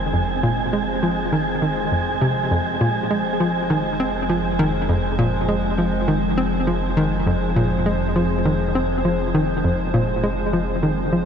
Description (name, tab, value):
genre	ambient, sequencer-driven space music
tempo	101 BPM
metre	4/4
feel	straight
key	F minor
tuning	A4 = 440 Hz
part	evolving wavetable pad	sustained chords	0.0-11.3 s	F3 to C5	-24 LUFS	equal	chorus, built-in reverb
part	hollow square pluck	riff	0.0-11.3 s	F2 to C4	-21 LUFS	equal	chorus, analog delay
part	round analog bass	bass	0.0-11.3 s	F1	-28 LUFS	equal	none
part	wind-like tuned noise texture	texture	0.0-11.3 s	Ab5	-28 LUFS	right 4 dB	built-in reverb
room	wet huge ambient reverb, RT60 8.2 s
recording	dark, warm production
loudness	-18 LUFS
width	side -7 dB against mid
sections	0.0-11.3 A section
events	fade-in on ambient pad 0.0-11.3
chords	0.0 Fm